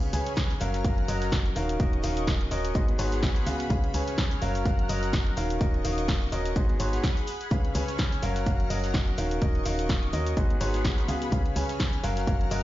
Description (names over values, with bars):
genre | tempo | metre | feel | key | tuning
piano house | 126 BPM | 4/4 | swing 56% on 16ths | Db mixolydian | A4 = 439 Hz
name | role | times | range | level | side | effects
analog string pad | sustained chords | 0.0-12.6 s | Ab4 to F6 | -38 LUFS | equal | ensemble chorus, phaser, sidechain pumping
clear upright piano | riff | 0.0-12.6 s | Ab2 to Ab5 | -30 LUFS | left 1 dB | sidechain pumping, ping-pong delay
solid FM bass | bass | 0.0-12.6 s | Eb1 to Eb2 | -30 LUFS | equal | sidechain pumping
punchy analog drum machine | drums | 0.0-12.6 s | cabasa, hi-hat, snare drum | -35 LUFS | equal | none
damped 70s drum kit | drums | 0.1-12.6 s | hi-hat, shaker, snare drum | -47 LUFS | right 2 dB | none
electronic kick drum | drums | 0.4-12.4 s | none | -26 LUFS | equal | none
room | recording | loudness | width
light reverb, small room ambience | played on a big sound system in a bare room, large studio reverb, nothing above 7.5 kHz | -24 LUFS | side -15 dB against mid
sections
0.0-12.6 A section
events
none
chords
0.0 Db7; 0.6 Gbmaj7; 1.6 Ebm7; 2.8 Abm7; 3.7 Db7; 4.4 Gbmaj7; 5.4 Ebm7; 6.6 Abm7; 7.5 Db7; 8.2 Gbmaj7; 9.2 Ebm7; 10.4 Abm7; 11.3 Db7; 12.0 Gbmaj7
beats
0.37 0.85 1.32 | 1.80 2.27 2.75 3.23 | 3.70 4.18 4.66 5.13 | 5.61 6.08 6.56 7.04 | 7.51 7.99 8.46 8.94 | 9.42 9.89 10.37 10.85 | 11.32 11.80 12.27